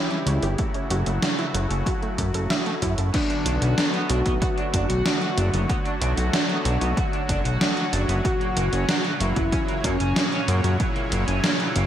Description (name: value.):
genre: synthwave.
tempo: 94 BPM.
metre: 4/4.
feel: straight.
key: B minor.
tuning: A4 = 440 Hz.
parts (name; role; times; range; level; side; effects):
wide unison lead; melody; 0.0-10.7 s; C#4 to F#4; -29 LUFS; equal; digital delay.
soft supersaw; sustained chords; 0.0-11.9 s; A#2 to C#5; -28 LUFS; left 1 dB; lush chorus, sidechain pumping.
wide unison pluck; arpeggios; 0.0-3.0 s; A3 to E5; -32 LUFS; right 2 dB; digital delay.
gated 80s digital drum machine; drums; 0.1-11.9 s; crash cymbal, hi-hat, snare drum; -26 LUFS; right 1 dB; gated reverb, gated reverb snare, studio reverb.
fat analog bass; bass; 0.3-11.9 s; F#1 to F#2; -23 LUFS; equal; sidechain pumping.
electronic kick drum; drums; 0.6-10.9 s; none; -27 LUFS; equal; overdrive, studio reverb.
raw garage guitar; riff; 3.1-11.8 s; F#3 to F#4; -31 LUFS; right 3 dB; overdrive, lush chorus, digital delay.
room: light reverb.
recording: bright 1980s-style digital production.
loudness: -21 LUFS.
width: side -10 dB against mid.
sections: 0.0-3.1 A section; 3.1-11.9 B section.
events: none.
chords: 0.0 C#dim; 0.6 F#m7; 3.1 Bm7; 8.2 F#.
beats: | 0.59 1.23 1.86 2.50 | 3.14 3.78 4.42 5.06 | 5.69 6.33 6.97 7.61 | 8.25 8.89 9.52 10.16 | 10.80 11.44.